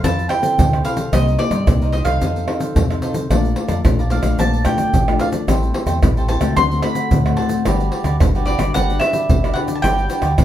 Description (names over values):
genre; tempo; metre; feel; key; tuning
samba and choro; 110 BPM; 4/4; straight; G major; A4 = 440 Hz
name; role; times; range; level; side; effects
bowl-back mandolin; melody; 0.0-10.4 s; D5 to C6; -21 LUFS; right 2 dB; none
cavaquinho; accompaniment; 0.0-10.3 s; D4 to A5; -27 LUFS; right 3 dB; none
nylon-string guitar; accompaniment; 0.0-10.4 s; G2 to B4; -24 LUFS; left 5 dB; none
deep dub fingered electric bass; bass; 0.0-10.4 s; G1 to G2; -20 LUFS; equal; none
egg shaker, surdo, pandeiro and tamborim; percussion; 0.0-10.4 s; none; -19 LUFS; equal; none
room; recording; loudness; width
wet studio reverb, RT60 0.5 s; band playing live in one room; -15 LUFS; side -12 dB against mid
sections
0.0-10.4 A section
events
none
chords
0.0 Fmaj7; 1.1 Cm7; 2.2 F7; 3.3 Bbmaj7; 5.5 Am7; 6.6 D7; 7.7 Gmaj7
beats
0.04 0.58 | 1.13 1.67 2.21 2.76 | 3.30 3.85 4.39 4.93 | 5.48 6.02 6.57 7.11 | 7.66 8.20 8.74 9.29 | 9.83 10.38